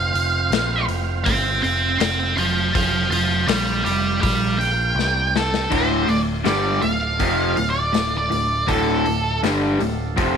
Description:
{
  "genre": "blues rock power trio and southern rock",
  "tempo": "81 BPM",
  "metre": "4/4",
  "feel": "straight",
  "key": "D minor",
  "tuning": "A4 = 440 Hz",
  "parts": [
    { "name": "octave-fuzz lead guitar", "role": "melody", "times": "0.0-9.4 s", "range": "A4 to C6", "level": "-21 LUFS", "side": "right 2 dB", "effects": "distortion" },
    { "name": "overdriven tonewheel organ", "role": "sustained chords", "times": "0.0-10.4 s", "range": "A3 to G5", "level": "-31 LUFS", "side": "right 11 dB", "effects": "slow rotary speaker" },
    { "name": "growling picked electric bass", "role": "bass", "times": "0.0-10.4 s", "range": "D1 to C2", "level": "-25 LUFS", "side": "equal", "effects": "overdrive" },
    { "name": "big rock drum kit", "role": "drums", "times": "0.2-10.4 s", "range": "crash cymbal, hi-hat, kick drum, snare drum", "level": "-26 LUFS", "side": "left 5 dB", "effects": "none" },
    { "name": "raw garage guitar", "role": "riff", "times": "5.7-10.4 s", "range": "D2 to G3", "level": "-21 LUFS", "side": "left 1 dB", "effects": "overdrive" }
  ],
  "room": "light reverb, small room ambience",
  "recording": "1960s-style stereo",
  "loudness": "-18 LUFS",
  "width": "side -7 dB against mid",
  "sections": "0.0-5.7 A section; 5.7-10.4 B section",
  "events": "lead electric guitar solo 0.0-5.7; drum fill 5.0-5.7",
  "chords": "0.0 F5; 4.2 Bb5; 5.0 C5; 5.7 Dm",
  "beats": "0.52 1.26 2.00 | 2.74 3.48 4.22 4.96 | 5.71 6.45 7.20 7.95 | 8.69 9.44 10.18"
}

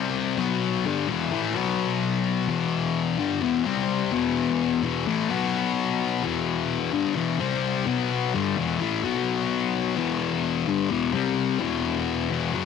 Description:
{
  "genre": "rock",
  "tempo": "128 BPM",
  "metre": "4/4",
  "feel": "straight",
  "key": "E minor",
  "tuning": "A4 = 440 Hz",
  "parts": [
    { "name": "thick fuzz guitar", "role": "solo", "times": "0.0-12.7 s", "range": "E2 to C4", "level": "-23 LUFS", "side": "left 7 dB", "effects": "distortion" }
  ],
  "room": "light reverb",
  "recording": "none",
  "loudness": "-23 LUFS",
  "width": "side -6 dB against mid",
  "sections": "0.0-12.3 A section",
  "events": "none",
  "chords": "0.4 B5; 0.9 Em; 1.6 B5; 2.5 Em; 3.7 C5; 4.1 E5; 5.3 B5; 6.2 Em; 7.4 C5; 7.9 B5; 8.3 Em; 9.0 B5; 10.0 Em; 11.1 C5; 11.6 E5",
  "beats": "0.15 0.62 | 1.09 1.55 2.02 2.49 | 2.96 3.43 3.89 4.36 | 4.83 5.30 5.76 6.23 | 6.70 7.17 7.63 8.10 | 8.57 9.04 9.50 9.97 | 10.44 10.90 11.37 11.83 | 12.30"
}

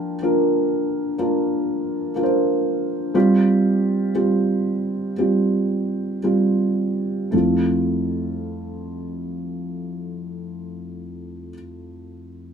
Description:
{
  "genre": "pop",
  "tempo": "54-63 BPM",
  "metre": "4/4",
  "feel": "straight",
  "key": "F major",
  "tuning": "A4 = 440 Hz",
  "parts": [
    { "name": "felt-muted upright piano", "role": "accompaniment", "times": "0.0-12.5 s", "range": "F2 to G5", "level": "-20 LUFS", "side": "right 1 dB", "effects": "none" }
  ],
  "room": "wet studio reverb, RT60 0.5 s",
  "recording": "band playing live in one room",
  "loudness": "-19 LUFS",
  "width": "side -7 dB against mid",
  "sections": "0.0-7.3 A section; 7.3-11.7 B section",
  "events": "slowing down 0.0-7.3",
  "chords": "0.0 Bb/F; 3.1 Csus4; 7.3 Fmaj7",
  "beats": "0.22 1.18 2.15 | 3.14 4.15 5.18 6.24 | 7.33 8.43 9.54 10.64"
}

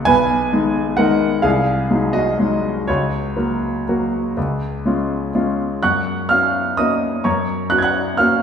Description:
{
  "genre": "classical, piano waltz",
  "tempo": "117-138 BPM",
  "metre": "3/4",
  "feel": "rubato",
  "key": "F# major",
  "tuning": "A4 = 440 Hz",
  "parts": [
    { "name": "warm grand piano", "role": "solo", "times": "0.0-8.4 s", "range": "B1 to G#6", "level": "-16 LUFS", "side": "equal", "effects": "none" }
  ],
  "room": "wet stone room reverb, RT60 1.4 s",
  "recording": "heard from further back in the room",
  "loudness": "-16 LUFS",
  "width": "side -7 dB against mid",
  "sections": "0.0-5.8 A section; 5.8-8.4 B section",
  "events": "none",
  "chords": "0.1 G#m/B; 1.4 G#7/B#; 2.9 F#/C#; 4.4 C#; 5.8 F#",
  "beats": "| 0.07 0.52 0.98 | 1.45 1.91 2.39 | 2.88 3.36 3.88 | 4.37 4.85 5.34 | 5.82 6.30 6.79 | 7.25 7.71 8.19"
}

